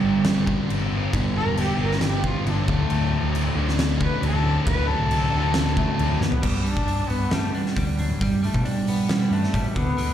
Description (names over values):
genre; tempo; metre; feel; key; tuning
quiet-loud alternative rock; 136 BPM; 4/4; straight; G major; A4 = 440 Hz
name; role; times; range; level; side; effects
warm cello; melody; 0.0-10.1 s; F#3 to B4; -26 LUFS; right 1 dB; slapback echo
thick fuzz guitar; riff; 0.0-6.2 s; G2 to D4; -25 LUFS; left 1 dB; distortion, slapback echo
hollow-body short-scale fingered electric bass; bass; 0.0-10.1 s; E1 to B2; -25 LUFS; equal; none
oversized low-tuned drum kit; drums; 0.2-10.1 s; crash cymbal, hi-hat, kick drum, snare drum, toms; -26 LUFS; equal; none
clean electric guitar; arpeggios; 6.4-10.1 s; D3 to D4; -31 LUFS; left 1 dB; lush chorus, slapback echo
room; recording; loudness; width
light reverb; live gig heard through the venue's PA, club reverb; -20 LUFS; side -10 dB against mid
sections
0.0-6.4 A section; 6.4-10.1 B section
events
cello solo 0.0-6.4; drum fill 6.2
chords
0.0 G; 2.7 D; 6.4 Gadd9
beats
0.26 0.70 | 1.14 1.58 2.02 2.46 | 2.90 3.34 3.78 4.22 | 4.67 5.11 5.55 5.99 | 6.43 6.88 7.32 7.76 | 8.21 8.65 9.09 9.54 | 9.98